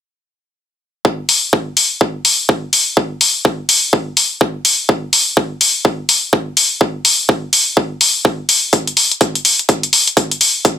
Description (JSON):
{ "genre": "bass house", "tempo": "125 BPM", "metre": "4/4", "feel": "swing 61% on 16ths", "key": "none", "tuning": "none", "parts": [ { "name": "electronic kick drum", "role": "drums", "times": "1.0-10.8 s", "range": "none", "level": "-14 LUFS", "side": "equal", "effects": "high-pass filter on kick" }, { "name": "electronic hi-hat", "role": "drums", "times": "1.3-10.8 s", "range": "none", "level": "-11 LUFS", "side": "left 2 dB", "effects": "none" } ], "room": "little or no reverb", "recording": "none", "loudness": "-11 LUFS", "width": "side -9 dB against mid", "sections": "1.0-10.8 A section", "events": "none", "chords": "none" }